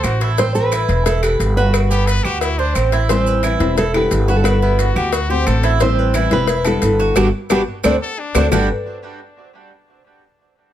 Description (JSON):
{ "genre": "latin, Cuban son and guajira", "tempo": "177 BPM", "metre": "4/4", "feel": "straight", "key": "G major", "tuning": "A4 = 440 Hz", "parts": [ { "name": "brilliant trumpet", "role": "second line", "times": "0.0-5.7, 8.0-8.7 s", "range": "C4 to B4", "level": "-26 LUFS", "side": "left 4 dB", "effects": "tape echo" }, { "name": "Cuban tres", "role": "arpeggios", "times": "0.0-8.7 s", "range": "G3 to C5", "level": "-22 LUFS", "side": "right 6 dB", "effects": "tape echo" }, { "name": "upright bass", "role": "bass", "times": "0.0-8.7 s", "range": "E1 to D2", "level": "-18 LUFS", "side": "equal", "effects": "none" }, { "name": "claves", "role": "percussion", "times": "0.0-8.6 s", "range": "none", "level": "-29 LUFS", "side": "right 4 dB", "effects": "none" }, { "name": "cowbell and bongos", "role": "percussion", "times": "0.0-8.6 s", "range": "none", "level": "-24 LUFS", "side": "left 6 dB", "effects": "none" }, { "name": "maracas", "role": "percussion", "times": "0.0-8.6 s", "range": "none", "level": "-32 LUFS", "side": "right 5 dB", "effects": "none" }, { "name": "nylon-string guitar", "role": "melody", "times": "0.4-8.7 s", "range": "F#4 to D5", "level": "-19 LUFS", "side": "equal", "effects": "none" }, { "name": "nylon-string guitar", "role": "accompaniment", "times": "3.1-8.7 s", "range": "D3 to F#4", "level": "-21 LUFS", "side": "left 5 dB", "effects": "none" } ], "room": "light reverb", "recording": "close, detailed microphones", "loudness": "-14 LUFS", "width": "side -11 dB against mid", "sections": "0.0-8.5 A section; 8.5-9.9 B section", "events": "band accent 7.2-8.5; drum fill 8.0-8.5", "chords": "0.4 Am; 1.1 Em; 1.7 Gmaj7; 2.4 D7; 3.1 Am7; 3.8 Em7; 4.5 Gmaj7; 5.1 D7; 5.8 Am7; 6.5 Em7; 7.2 Gmaj7; 7.8 D7; 8.5 Gmaj7(no3)", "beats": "0.04 | 0.38 0.72 1.06 1.40 | 1.74 2.08 2.42 2.76 | 3.10 3.44 3.77 4.11 | 4.45 4.79 5.13 5.47 | 5.81 6.15 6.49 6.82 | 7.16 7.50 7.84 8.18 | 8.52" }